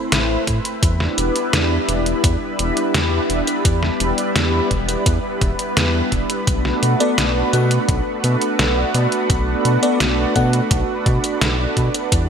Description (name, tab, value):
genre	synthwave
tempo	85 BPM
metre	4/4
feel	straight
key	unclear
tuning	A4 = 442 Hz
part	analog string pad	sustained chords	0.0-12.3 s	G3 to C5	-20 LUFS	right 1 dB	ensemble chorus, sidechain pumping
part	round analog bass	bass	0.1-12.3 s	E1 to B2	-20 LUFS	equal	tube saturation
part	detuned 8-bit digital drum machine	drums	0.1-12.3 s	hi-hat, snare drum	-21 LUFS	equal	studio reverb
part	electronic kick drum	drums	0.5-12.3 s	none	-20 LUFS	equal	studio reverb
part	FM electric piano with soft pad layer	stabs	7.0-10.5 s	B3 to F#5	-21 LUFS	left 3 dB	chorus, phaser, digital delay
room	light reverb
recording	none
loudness	-16 LUFS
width	side -7 dB against mid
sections	0.0-12.3 A section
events	none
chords	0.0 Amadd9; 0.8 Em7; 6.5 Bm7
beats	0.12 | 0.83 1.53 2.24 2.94 | 3.65 4.36 5.06 5.77 | 6.47 7.18 7.88 8.59 | 9.30 10.00 10.71 11.41 | 12.12